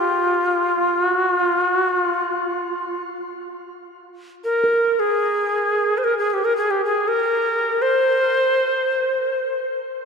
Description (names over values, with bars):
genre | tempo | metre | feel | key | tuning
world meditative, free-time meditation music | free time | none | none | unclear | A4 = 440 Hz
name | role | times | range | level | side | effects
bright low Native American-style wooden flute | melody | 0.0-9.6 s | F4 to C5 | -18 LUFS | equal | shimmer reverb, ping-pong delay
quartz singing bowl | texture | 4.6-10.1 s | Bb4 | -29 LUFS | right 3 dB | shimmer reverb
room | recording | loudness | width
wet cathedral reverb, RT60 4.6 s | dark, warm production | -18 LUFS | side -5 dB against mid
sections
0.0-3.7 A section; 3.7-10.1 A section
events
none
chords
none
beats
free time